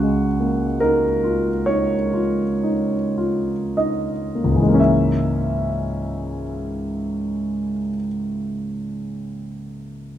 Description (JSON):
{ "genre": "classical, impressionist solo piano", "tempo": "16-27 BPM (dotted quarters)", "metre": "6/8", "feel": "rubato", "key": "C# dorian", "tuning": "A4 = 441 Hz", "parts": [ { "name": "clear concert grand piano", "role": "solo", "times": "0.0-10.2 s", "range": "C#2 to E5", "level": "-19 LUFS", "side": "equal", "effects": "none" } ], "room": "moderate scoring stage reverb, RT60 1.6 s", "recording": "close, detailed microphones", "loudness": "-19 LUFS", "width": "side -11 dB against mid", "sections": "0.0-4.8 A section; 4.8-9.6 B section", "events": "slowing down 0.0-4.8", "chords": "0.0 D#m11/C#; 4.8 C#m6" }